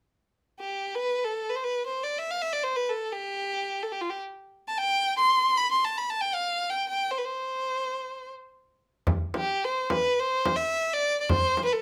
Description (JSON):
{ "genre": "Turkish makam ensemble", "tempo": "free time", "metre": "none", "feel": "none", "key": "C makam rast", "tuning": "A4 = 440 Hz", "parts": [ { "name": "warm violin", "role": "melody", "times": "0.6-11.8 s", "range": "F4 to C6", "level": "-28 LUFS", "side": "equal", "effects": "none" }, { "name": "frame drum", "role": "percussion", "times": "9.1-11.7 s", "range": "none", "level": "-29 LUFS", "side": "equal", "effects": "none" } ], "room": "moderate studio reverb, RT60 0.6 s", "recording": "none", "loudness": "-28 LUFS", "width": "mono", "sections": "0.2-9.1 A section; 9.1-11.8 B section", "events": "none", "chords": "none", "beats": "free time" }